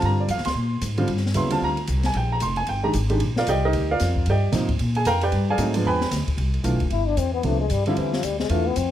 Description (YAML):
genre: modal jazz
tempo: 226 BPM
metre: 4/4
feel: swing 61% on 8ths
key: Eb major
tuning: A4 = 443 Hz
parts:
  - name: warm baby grand piano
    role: accompaniment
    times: 0.0-8.6 s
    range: C3 to C6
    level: -24 LUFS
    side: right 2 dB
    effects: none
  - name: upright bass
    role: bass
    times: 0.0-8.9 s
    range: E1 to Bb2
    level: -24 LUFS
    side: equal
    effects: none
  - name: open jazz drum kit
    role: drums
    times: 0.0-8.8 s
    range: hi-hat, kick drum, ride cymbal, snare drum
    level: -31 LUFS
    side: left 1 dB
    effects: none
  - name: trombone with cup mute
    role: second line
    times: 6.9-8.9 s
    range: E3 to E4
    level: -25 LUFS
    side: left 10 dB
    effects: none
room: light reverb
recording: close, detailed microphones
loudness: -20 LUFS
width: side -11 dB against mid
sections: 0.0-6.4 A section; 6.4-8.9 A section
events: trombone solo 6.4-8.9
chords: 0.0 Ebmaj9; 5.3 G7b9; 6.4 Cadd9